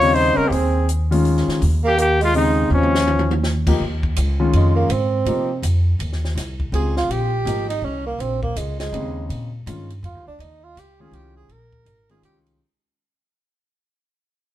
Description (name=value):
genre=modal jazz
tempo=164 BPM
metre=3/4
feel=swing 63% on 8ths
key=unclear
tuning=A4 = 440 Hz
part: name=warm trumpet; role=melody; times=0.0-3.4 s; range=Db4 to Db5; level=-18 LUFS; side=left 2 dB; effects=none
part: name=breathy tenor saxophone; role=second line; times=0.0-12.4 s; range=F3 to Bb4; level=-23 LUFS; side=right 4 dB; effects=none
part: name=warm concert grand piano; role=accompaniment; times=0.0-12.6 s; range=Db3 to Ab4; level=-23 LUFS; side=left 3 dB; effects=none
part: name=upright bass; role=bass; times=0.0-12.6 s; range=Ab1 to C3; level=-21 LUFS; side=equal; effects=none
part: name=compact cocktail drum kit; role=drums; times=0.0-12.5 s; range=crash cymbal, hi-hat, kick drum, ride cymbal, snare drum, toms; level=-27 LUFS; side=equal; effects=none
room=light reverb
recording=band playing live in one room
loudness=-17 LUFS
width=side -13 dB against mid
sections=0.0-3.8 A section; 3.8-12.6 B section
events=drum fill 2.7-3.4; fade-out 3.8-12.6; tenor saxophone solo 3.8-12.6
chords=0.0 Eb13sus4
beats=0.15 | 0.51 0.88 1.25 | 1.61 1.98 2.34 | 2.71 3.07 3.44 | 3.81 4.17 4.54 | 4.90 5.27 5.64 | 6.00 6.37 6.73 | 7.10 7.47 7.83 | 8.20 8.56 8.93 | 9.30 9.66 10.03 | 10.40 10.76 11.13 | 11.49 11.86 12.23